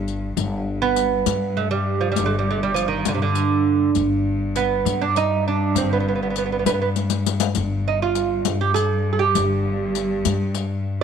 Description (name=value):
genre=Persian modal ensemble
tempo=67 BPM (dotted quarters)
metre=6/8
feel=straight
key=G dastgah homayun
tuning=A4 = 440 Hz
part: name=upright bass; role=bass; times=0.0-11.0 s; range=G1 to G2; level=-24 LUFS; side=left 2 dB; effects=none
part: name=clear cello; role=drone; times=0.0-11.0 s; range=G2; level=-28 LUFS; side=equal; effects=stereo widening
part: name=riq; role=percussion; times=0.1-10.7 s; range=none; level=-25 LUFS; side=left 14 dB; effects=none
part: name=lute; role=melody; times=0.8-11.0 s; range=C3 to Ab4+45c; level=-21 LUFS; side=right 7 dB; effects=none
room=moderate echo chamber reverb, RT60 1.6 s, studio ambience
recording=1960s-style stereo with parts hard left and right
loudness=-19 LUFS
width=side -7 dB against mid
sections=0.4-11.0 A section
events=drum fill 7.0-7.6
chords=none